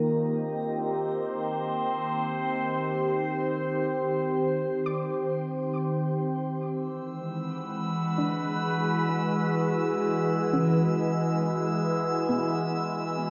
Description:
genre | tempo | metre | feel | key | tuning
ambient | 51 BPM | 3/4 | straight | unclear | A4 = 438 Hz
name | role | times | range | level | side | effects
evolving wavetable pad | sustained chords | 0.0-13.3 s | Eb3 to C5 | -28 LUFS | equal | phaser, built-in reverb, shimmer reverb
soft round pluck | arpeggios | 0.8-13.3 s | B3 to D6 | -38 LUFS | equal | analog chorus, diffuse ambient delay, shimmer reverb
drifting glass-harmonics texture | texture | 7.2-13.3 s | E6 | -38 LUFS | equal | chorus, built-in reverb, shimmer reverb
room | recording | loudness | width
wet concert hall reverb, RT60 2.2 s | dark, warm production | -28 LUFS | mono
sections
0.0-13.3 A section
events
fade-in on synth pluck 0.0-13.3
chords
0.0 Eb5; 6.7 Eadd9

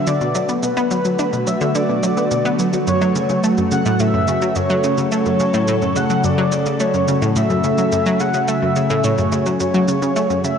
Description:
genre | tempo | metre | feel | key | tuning
ambient, sequencer-driven space music | 107 BPM | 4/4 | straight | F# minor | A4 = 440 Hz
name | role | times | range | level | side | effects
breathy flute-like synth lead | melody | 0.0-10.6 s | B4 to F#5 | -21 LUFS | equal | analog chorus, tape echo
evolving wavetable pad | sustained chords | 0.0-10.6 s | C#3 to B4 | -20 LUFS | equal | chorus, built-in reverb
analog pluck | riff | 0.0-10.5 s | F#2 to D4 | -20 LUFS | equal | chorus, tape echo
cabasa and woodblock | percussion | 0.1-10.6 s | none | -31 LUFS | right 2 dB | tape echo
room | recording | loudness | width
wet lush hall reverb, RT60 2.8 s | nothing above 10.3 kHz | -15 LUFS | side -7 dB against mid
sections
0.0-10.6 A section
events
none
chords
0.0 Bm; 2.9 F#m

